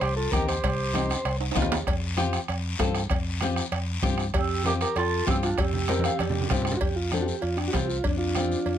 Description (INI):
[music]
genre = latin, cumbia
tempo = 194 BPM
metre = 4/4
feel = straight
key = unclear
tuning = A4 = 442 Hz
[part]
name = combo organ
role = melody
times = 0.0-1.4, 4.3-8.8 s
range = D4 to C5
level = -29 LUFS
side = right 1 dB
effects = none
[part]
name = growling clarinet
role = second line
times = 0.0-1.4, 4.4-6.5 s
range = C4 to G4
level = -32 LUFS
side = right 6 dB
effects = none
[part]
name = fingered electric bass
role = bass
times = 0.0-8.8 s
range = C2 to G2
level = -29 LUFS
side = equal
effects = none
[part]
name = bombo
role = percussion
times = 0.0-8.5 s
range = none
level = -29 LUFS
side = equal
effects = none
[part]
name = cowbell and timbales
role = percussion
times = 0.0-8.8 s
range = none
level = -33 LUFS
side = right 5 dB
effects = none
[part]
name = guiro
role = percussion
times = 0.0-8.8 s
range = none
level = -36 LUFS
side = left 6 dB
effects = none
[part]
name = flamenco guitar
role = accompaniment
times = 0.3-8.6 s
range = C4 to F5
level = -30 LUFS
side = left 6 dB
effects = none
[part]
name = congas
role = percussion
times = 0.3-8.5 s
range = none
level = -34 LUFS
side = right 2 dB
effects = none
[sound]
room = light reverb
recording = close, detailed microphones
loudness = -24 LUFS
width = side -10 dB against mid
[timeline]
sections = 0.0-6.8 A section; 6.8-8.8 B section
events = drum fill 1.4-1.9, 5.9-6.8; nylon-string guitar fill 5.9-6.8; transistor combo organ solo 6.8-8.8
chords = 0.0 Cm; 1.9 Fsus2; 6.8 F5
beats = 0.02 0.33 | 0.64 0.94 1.25 1.56 | 1.87 2.18 2.49 2.80 | 3.11 3.42 3.73 4.04 | 4.34 4.65 4.96 5.27 | 5.58 5.89 6.20 6.51 | 6.82 7.12 7.43 7.74 | 8.05 8.36 8.67